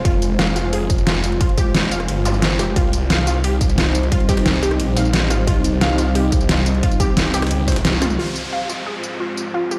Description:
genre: dark technical drum and bass.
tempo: 177 BPM.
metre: 4/4.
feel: straight.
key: F minor.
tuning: A4 = 440 Hz.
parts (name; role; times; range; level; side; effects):
dark analog pad; sustained chords; 0.0-9.8 s; G3 to C5; -27 LUFS; equal; chorus, sidechain pumping.
unison pluck; arpeggios; 0.0-9.8 s; F4 to F5; -28 LUFS; equal; sidechain pumping, digital delay.
snarling distorted saw bass; bass; 0.0-8.2 s; F1 to Db2; -23 LUFS; equal; distortion, overdrive.
granular cloud pad; texture; 0.0-9.8 s; C4 to Ab5; -31 LUFS; equal; built-in reverb, sidechain pumping.
dubstep drum kit; drums; 0.1-9.8 s; hi-hat, rim click, snare drum, tambourine, toms; -24 LUFS; equal; none.
electronic kick drum; drums; 0.1-7.7 s; none; -22 LUFS; equal; none.
jungle sampler-style drum kit; drums; 0.1-8.1 s; hi-hat, ride cymbal, snare drum; -34 LUFS; equal; none.
zap and downlifter; sound effects; 2.3, 8.2-9.8 s; none; -31 LUFS; equal; none.
room: light reverb.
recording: played on a big sound system in a bare room, large studio reverb.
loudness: -18 LUFS.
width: mono.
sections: 0.0-8.2 A section; 8.2-9.8 B section.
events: drum fill 7.8-8.2; band accent 7.8.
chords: 0.0 Fm; 2.8 Cm; 8.2 Fm.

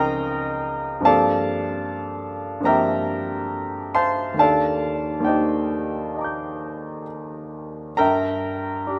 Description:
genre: classical, impressionist solo piano.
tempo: 63-77 BPM.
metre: 4/4.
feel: rubato.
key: G minor.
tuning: A4 = 435 Hz.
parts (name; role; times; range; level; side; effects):
clear grand piano; solo; 0.0-9.0 s; Db2 to G6; -23 LUFS; equal; none.
room: moderate concert hall reverb, RT60 2.2 s.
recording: none.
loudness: -23 LUFS.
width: mono.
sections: 0.0-8.0 A section; 8.0-9.0 B section.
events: none.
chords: 0.0 Bbm11/Db; 1.1 Gm11; 4.4 Ebmaj7; 8.0 Gm.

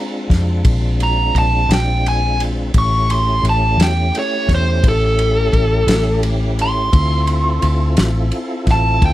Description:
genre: slow blues.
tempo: 57 BPM (dotted quarters).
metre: 12/8.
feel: straight.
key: unclear.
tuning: A4 = 440 Hz.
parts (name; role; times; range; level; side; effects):
dark smooth lead guitar; melody; 0.0-9.1 s; A4 to C#6; -18 LUFS; right 1 dB; overdrive.
tonewheel organ; sustained chords; 0.0-9.1 s; Ab3 to A4; -24 LUFS; left 1 dB; slow rotary speaker, chorus vibrato.
vintage muted fingered electric bass; bass; 0.3-9.1 s; A1 to F2; -16 LUFS; equal; none.
warm soul drum kit; drums; 0.3-9.1 s; kick drum, ride cymbal, snare drum; -20 LUFS; equal; none.
room: little or no reverb.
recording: none.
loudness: -13 LUFS.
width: side -14 dB against mid.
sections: 0.0-9.1 A section.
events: lead electric guitar solo 0.0-9.1.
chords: 0.0 Bb7; 2.7 A7; 6.9 Dm7.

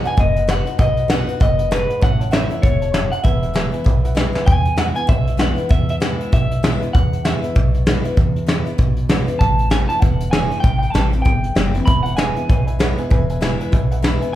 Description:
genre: rockabilly.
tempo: 195 BPM.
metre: 4/4.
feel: swing 59% on 8ths.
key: E major.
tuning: A4 = 440 Hz.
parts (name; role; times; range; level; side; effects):
electric guitar through a small old amp; melody; 0.0-12.6 s; B4 to B5; -22 LUFS; equal; none.
dark upright piano; accompaniment; 0.0-4.4, 11.9-14.4 s; B4 to B5; -30 LUFS; right 2 dB; none.
picked steel-string acoustic guitar; accompaniment; 0.0-14.3 s; E2 to F#4; -26 LUFS; left 2 dB; none.
soft brush drum kit; drums; 0.1-14.3 s; hi-hat, kick drum, snare drum; -17 LUFS; equal; none.
upright bass; bass; 0.2-14.2 s; E1 to E2; -22 LUFS; equal; none.
room: moderate large studio reverb, RT60 0.9 s.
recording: band playing live in one room.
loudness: -15 LUFS.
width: side -13 dB against mid.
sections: 0.0-4.5 A section; 4.5-14.4 A section.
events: drum fill 4.3; upright piano fill 13.7-14.3.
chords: 0.0 B; 2.0 A; 3.2 E; 9.4 A; 10.6 Am7; 11.9 E.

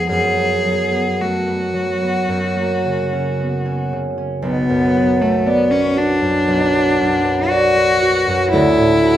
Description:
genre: classical, romantic duo for cello and harp.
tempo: 54-60 BPM.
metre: 4/4.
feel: rubato.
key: B minor.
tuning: A4 = 440 Hz.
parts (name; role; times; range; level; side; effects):
rich cello; melody; 0.0-9.2 s; A3 to G#4; -17 LUFS; left 1 dB; none.
concert harp; accompaniment; 0.0-9.2 s; B1 to D5; -17 LUFS; right 1 dB; none.
room: wet recital hall reverb, RT60 1.3 s.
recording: none.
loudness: -14 LUFS.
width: side -12 dB against mid.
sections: 0.0-4.4 A section; 4.4-9.2 B section.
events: none.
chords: 0.1 B5/F#; 2.3 F#; 4.4 Bm; 8.5 D.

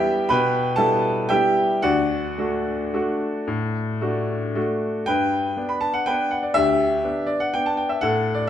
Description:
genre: classical, piano waltz.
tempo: 106-132 BPM.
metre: 3/4.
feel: rubato.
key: G major.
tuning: A4 = 440 Hz.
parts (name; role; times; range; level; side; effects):
bright grand piano; solo; 0.0-8.5 s; D2 to B5; -20 LUFS; equal; none.
room: wet recital hall reverb, RT60 1.5 s.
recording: none.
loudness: -20 LUFS.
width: side -10 dB against mid.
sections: 0.0-5.1 A section; 5.1-8.5 B section.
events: none.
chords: 0.0 Em; 1.8 D; 5.1 G.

